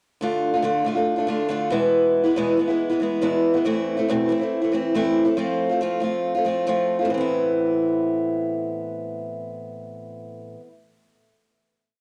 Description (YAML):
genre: rock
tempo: 139 BPM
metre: 4/4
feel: straight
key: A harmonic minor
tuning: A4 = 440 Hz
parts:
  - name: picked old ladder-braced acoustic guitar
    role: solo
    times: 0.2-10.7 s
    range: E2 to F4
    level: -23 LUFS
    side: equal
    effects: none
room: light reverb, small room ambience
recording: home recording on cassette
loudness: -22 LUFS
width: mono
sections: 0.2-7.1 verse; 7.1-10.6 final chord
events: none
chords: 0.2 Dm; 1.7 E; 3.7 Amadd9/E; 5.4 F; 7.1 Amadd9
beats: | 0.21 0.64 1.07 1.50 | 1.94 2.37 2.80 3.23 | 3.66 4.09 4.52 4.95 | 5.38 5.81 6.24 6.67 | 7.10 7.53 7.96 8.40 | 8.83 9.26 9.70 10.13